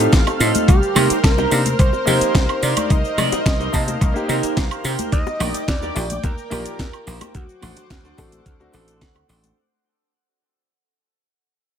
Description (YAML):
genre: nu-disco, nu disco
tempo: 108 BPM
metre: 4/4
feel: straight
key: unclear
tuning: A4 = 441 Hz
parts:
  - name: wide unison lead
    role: melody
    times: 0.0-9.3 s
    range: F#4 to Eb5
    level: -25 LUFS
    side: right 1 dB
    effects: digital delay
  - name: warm concert grand piano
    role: accompaniment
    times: 0.0-9.6 s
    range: A3 to A5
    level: -26 LUFS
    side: left 2 dB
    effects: sidechain pumping, dub echo
  - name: lush unison pad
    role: sustained chords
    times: 0.0-9.5 s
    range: A4 to F6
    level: -28 LUFS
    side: equal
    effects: chorus, sidechain pumping
  - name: clean electric guitar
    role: riff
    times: 0.0-9.6 s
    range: D4 to G5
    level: -24 LUFS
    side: right 3 dB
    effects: wide subtle chorus
  - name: dry thumbed slap bass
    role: bass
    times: 0.0-9.5 s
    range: A1 to C3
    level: -22 LUFS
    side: equal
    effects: sidechain pumping
  - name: egg shaker, bongos and congas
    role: percussion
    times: 0.0-9.5 s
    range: none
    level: -28 LUFS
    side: left 5 dB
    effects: none
  - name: electronic kick drum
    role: drums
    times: 0.1-9.1 s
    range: none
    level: -17 LUFS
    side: equal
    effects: none
  - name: house drum kit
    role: drums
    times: 0.1-9.5 s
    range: hi-hat, shaker, snare drum, woodblock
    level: -25 LUFS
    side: right 2 dB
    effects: none
room: little or no reverb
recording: none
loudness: -16 LUFS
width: side -8 dB against mid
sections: 0.0-9.6 A section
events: drop 0.0-9.6; clean electric guitar fill 0.0-0.7, 4.0-5.1, 8.5-9.6; fade-out 0.7-9.6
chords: 0.0 F7/A; 0.7 Cm7; 5.1 Ebmaj7; 7.3 D7